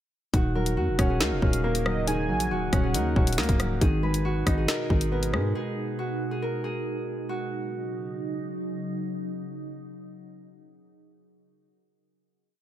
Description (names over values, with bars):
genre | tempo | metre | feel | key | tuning
hip hop, drill | 138 BPM | 4/4 | half-time | Eb minor | A4 = 440 Hz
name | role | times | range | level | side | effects
Celtic harp | melody | 0.3-9.7 s | Gb4 to Cb5 | -32 LUFS | right 1 dB | none
dark concert grand piano | accompaniment | 0.3-6.4 s | Eb3 to Eb5 | -31 LUFS | equal | none
glassy FM pad | sustained chords | 1.4-10.5 s | Cb3 to Eb4 | -34 LUFS | right 1 dB | ensemble chorus, built-in reverb
growling 808-style bass | bass | 0.3-5.5 s | Db1 to Ab2 | -27 LUFS | equal | none
drill drum kit | drums | 0.3-5.4 s | finger snaps, hi-hat, kick drum, rim click, snare drum | -25 LUFS | equal | none
warm velvety synth lead | second line | 1.0-3.8 s | Eb5 to Ab5 | -33 LUFS | right 3 dB | chorus, tape echo
room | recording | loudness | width
light reverb, digital ambience | none | -24 LUFS | side -12 dB against mid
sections
0.3-7.3 hook; 7.3-10.8 final chord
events
none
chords
0.3 Ebm7; 3.8 Abm; 7.3 Ebm7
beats
| 0.34 0.77 1.21 1.64 | 2.08 2.51 2.94 3.38 | 3.81 4.25 4.68 5.12 | 5.55 5.99 6.42 6.86 | 7.29 7.73 8.16 8.60 | 9.03 9.47 9.90 10.34